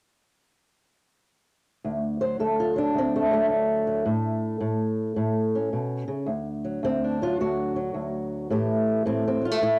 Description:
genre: acoustic country blues, solo or duo.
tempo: 108 BPM.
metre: 4/4.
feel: swing 65% on 8ths.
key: D mixolydian.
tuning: A4 = 440 Hz.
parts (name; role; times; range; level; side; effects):
fingerpicked old ladder-braced acoustic guitar; solo; 1.8-9.8 s; D2 to C5; -26 LUFS; equal; cassette tape.
room: light reverb.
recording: home recording on cassette.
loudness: -26 LUFS.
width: mono.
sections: 1.8-9.8 A section.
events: none.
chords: 1.8 D; 4.1 A; 6.3 D; 8.5 A7(no3).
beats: | 1.83 2.39 2.95 3.51 | 4.07 4.62 5.18 5.74 | 6.29 6.85 7.41 7.96 | 8.52 9.07 9.63.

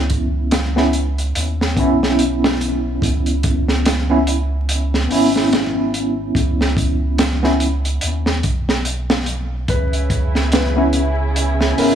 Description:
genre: trip hop.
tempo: 72 BPM.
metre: 4/4.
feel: swing 58% on 16ths.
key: C# minor.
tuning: A4 = 440 Hz.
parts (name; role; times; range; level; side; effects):
barky tine electric piano; accompaniment; 0.0-11.9 s; B3 to E4; -19 LUFS; equal; medium stereo tremolo, vintage 12-bit sampler grit, tape echo.
warm sub bass; bass; 0.0-11.9 s; G#1 to D#2; -20 LUFS; right 1 dB; tube saturation.
crunchy breakbeat drum kit; drums; 0.1-11.9 s; hi-hat, kick drum, snare drum; -20 LUFS; right 1 dB; none.
felt-muted upright piano; melody; 9.7-11.9 s; A#4 to B4; -26 LUFS; left 2 dB; dub echo.
muted studio string section; sustained chords; 9.7-11.9 s; C#3 to E4; -24 LUFS; right 1 dB; none.
wind-like tuned noise texture; texture; 10.3-11.9 s; G#4; -29 LUFS; right 5 dB; built-in reverb.
room: light reverb, studio reverb.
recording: vinyl crackle, small room ambience.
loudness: -15 LUFS.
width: side -9 dB against mid.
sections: 0.0-11.9 A section.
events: none.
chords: 0.0 C#m7.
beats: 0.52 1.35 2.19 | 3.02 3.85 4.68 5.52 | 6.35 7.18 8.02 8.85 | 9.69 10.52 11.35.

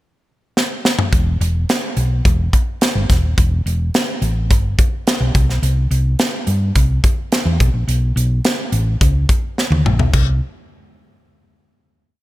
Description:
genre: polished 1980s jazz-funk pop.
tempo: 107 BPM.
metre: 4/4.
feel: straight.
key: unclear.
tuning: A4 = 440 Hz.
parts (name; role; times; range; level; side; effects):
modern studio drum kit; drums; 0.6-10.3 s; crash cymbal, hi-hat, kick drum, snare drum, toms; -16 LUFS; equal; gated reverb.
hollow-body short-scale fingered electric bass; bass; 1.1-10.4 s; Eb1 to G2; -16 LUFS; equal; none.
room: little or no reverb.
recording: none.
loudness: -14 LUFS.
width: side -17 dB against mid.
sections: 0.0-1.1 pickup bar; 1.1-10.1 verse; 10.1-12.2 final chord.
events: drum fill 0.6-1.1, 9.6-10.1.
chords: none.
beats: 0.00 0.56 | 1.12 1.69 2.25 2.81 | 3.38 3.94 4.50 5.07 | 5.63 6.19 6.75 7.32 | 7.88 8.45 9.01 9.57 | 10.13.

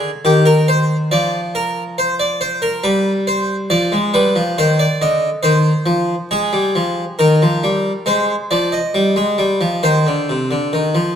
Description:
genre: classical, baroque-style two-part invention for harpsichord.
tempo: 69 BPM.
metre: 4/4.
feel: straight.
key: C minor.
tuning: A4 = 438 Hz.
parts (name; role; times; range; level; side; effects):
harpsichord; solo; 0.0-11.2 s; C3 to Eb5; -14 LUFS; equal; none.
room: wet recital hall reverb, RT60 1.4 s.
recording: close, detailed microphones.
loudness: -14 LUFS.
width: side -8 dB against mid.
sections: 0.0-6.3 A section; 6.3-11.2 B section.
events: none.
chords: 0.0 Cm; 1.1 Bbadd9/F; 2.8 G7; 4.6 Cm; 6.3 Ab5; 8.1 Fm; 9.8 Cmadd9.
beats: 0.26 1.12 1.98 | 2.84 3.71 4.57 5.44 | 6.32 7.20 8.08 8.95 | 9.83 10.73.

